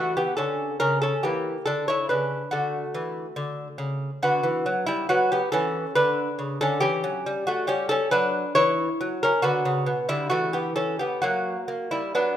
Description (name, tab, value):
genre	classical, baroque-style dance for lute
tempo	69 BPM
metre	3/4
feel	rubato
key	D major, B minor from 4.2 s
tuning	A4 = 439 Hz
part	lute	solo	0.0-12.4 s	B2 to C#5	-22 LUFS	equal	none
room	moderate recital hall reverb, RT60 1.4 s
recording	minimal, uncompressed stereo recording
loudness	-22 LUFS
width	side -10 dB against mid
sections	0.0-12.4 A section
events	none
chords	0.0 D; 0.8 C#dim7; 1.7 D; 4.2 Bm/D; 6.8 C#(b5, no3); 8.6 F#5/E; 9.4 Bm; 10.3 Emadd11; 11.2 F#